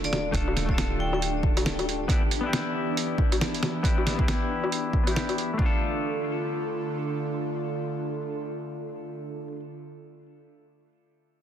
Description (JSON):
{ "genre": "future garage", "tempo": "137 BPM", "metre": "4/4", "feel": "swing 60% on 16ths", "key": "D dorian", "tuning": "A4 = 440 Hz", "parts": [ { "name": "vibraphone with hard mallets", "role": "melody", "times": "0.0-1.2 s", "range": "D5 to G5", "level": "-36 LUFS", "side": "left 3 dB", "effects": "ping-pong delay" }, { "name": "semi-hollow electric guitar", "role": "accompaniment", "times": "0.0-9.6 s", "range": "A3 to A4", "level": "-32 LUFS", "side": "left 3 dB", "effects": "sidechain pumping, low-pass filter, ping-pong delay" }, { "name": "airy breathy pad", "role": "sustained chords", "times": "0.0-9.5 s", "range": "D3 to A4", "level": "-32 LUFS", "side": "right 2 dB", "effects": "chorus, sidechain pumping" }, { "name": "soft 808-style bass", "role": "bass", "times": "0.0-2.1 s", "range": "D1", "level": "-32 LUFS", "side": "equal", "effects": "none" }, { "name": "lo-fi sampler-style drum kit", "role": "drums", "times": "0.0-5.5 s", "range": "hi-hat, snare drum, woodblock", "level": "-29 LUFS", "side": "equal", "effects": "overdrive" }, { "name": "flickering grainy texture", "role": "texture", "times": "0.0-5.6 s", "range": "D4", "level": "-40 LUFS", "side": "right 2 dB", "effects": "none" }, { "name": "electronic kick drum", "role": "drums", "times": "0.3-5.7 s", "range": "none", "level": "-25 LUFS", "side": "equal", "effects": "none" } ], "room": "light reverb, digital ambience", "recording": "dense, heavily limited modern master", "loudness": "-25 LUFS", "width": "side -10 dB against mid", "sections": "0.0-5.6 A section; 5.6-9.1 B section", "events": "filter sweep on clean electric guitar 0.0-5.6", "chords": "0.0 Dm; 2.1 Em7; 5.6 Dm" }